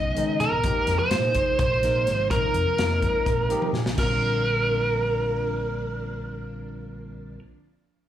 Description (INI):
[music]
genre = electric jazz fusion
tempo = 252 BPM (eighths)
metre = 7/8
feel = straight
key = Bb mixolydian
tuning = A4 = 440 Hz
[part]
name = biting lead guitar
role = melody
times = 0.0-7.4 s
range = Bb4 to D#5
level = -24 LUFS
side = right 1 dB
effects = overdrive, slapback echo
[part]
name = string machine, violins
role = sustained chords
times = 0.0-7.4 s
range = C3 to D#4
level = -36 LUFS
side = equal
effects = ensemble chorus
[part]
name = fretless electric bass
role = bass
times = 0.0-7.4 s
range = Ab1 to B2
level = -28 LUFS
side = equal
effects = none
[part]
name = bell-like tine electric piano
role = accompaniment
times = 0.2-7.4 s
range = D3 to Ab5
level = -33 LUFS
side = left 2 dB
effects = slapback echo
[part]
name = modern studio drum kit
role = drums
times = 0.2-4.1 s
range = crash cymbal, hi-hat, kick drum, snare drum, toms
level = -29 LUFS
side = left 1 dB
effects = none
[sound]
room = light reverb, studio reverb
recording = live gig heard through the venue's PA, club reverb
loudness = -21 LUFS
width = side -11 dB against mid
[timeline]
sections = 0.0-4.0 A section; 4.0-7.3 B section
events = tine electric piano fill 3.3-4.0; drum fill 3.6-4.0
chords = 0.0 B69; 0.7 Bb9sus4; 4.0 Bb